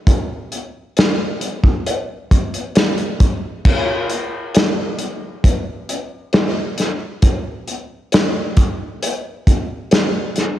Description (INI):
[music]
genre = pop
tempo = 67 BPM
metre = 4/4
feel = straight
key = none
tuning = none
[part]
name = loose indie drum kit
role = drums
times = 0.1-10.6 s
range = crash cymbal, hi-hat, kick drum, snare drum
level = -15 LUFS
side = equal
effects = cassette tape
[sound]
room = light reverb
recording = home recording on cassette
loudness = -16 LUFS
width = side -13 dB against mid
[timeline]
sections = 0.0-3.7 A section; 3.7-10.6 B section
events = none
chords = none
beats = | 0.07 0.96 1.86 2.76 | 3.65 4.55 5.44 6.34 | 7.23 8.13 9.03 9.92